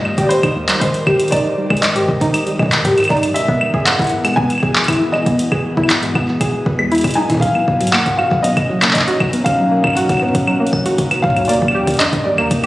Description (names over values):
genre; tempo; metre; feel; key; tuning
IDM; 118 BPM; 4/4; straight; unclear; A4 = 439 Hz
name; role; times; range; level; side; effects
felt-muted upright piano; melody; 0.0-12.7 s; C5 to G#5; -20 LUFS; equal; digital delay, shimmer reverb
warbly tape-like pad; sustained chords; 0.0-12.7 s; B2 to G5; -22 LUFS; equal; chorus, built-in reverb, vintage 12-bit sampler grit, sidechain pumping, shimmer reverb
booming analog drum machine; drums; 0.1-12.7 s; claves, handclaps, hi-hat, toms; -18 LUFS; equal; none
warbly dusty pluck; arpeggios; 0.2-12.7 s; F#3 to B4; -19 LUFS; equal; chorus, digital delay, shimmer reverb
round analog bass; bass; 0.2-12.7 s; Eb1 to Ab2; -26 LUFS; equal; none
electronic kick drum; drums; 0.2-12.6 s; none; -19 LUFS; equal; overdrive
room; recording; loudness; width
moderate plate reverb, RT60 1.2 s; recorded on a phone in the room, studio reverb, compression; -13 LUFS; side -17 dB against mid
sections
0.0-12.7 A section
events
none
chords
0.0 Abmaj7; 3.4 Emaj7; 7.4 B; 11.5 Ebmaj7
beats
0.31 0.81 | 1.32 1.83 2.34 2.85 | 3.36 3.87 4.37 4.88 | 5.39 5.90 6.41 6.92 | 7.42 7.93 8.44 8.95 | 9.46 9.97 10.47 10.98 | 11.49 12.00 12.51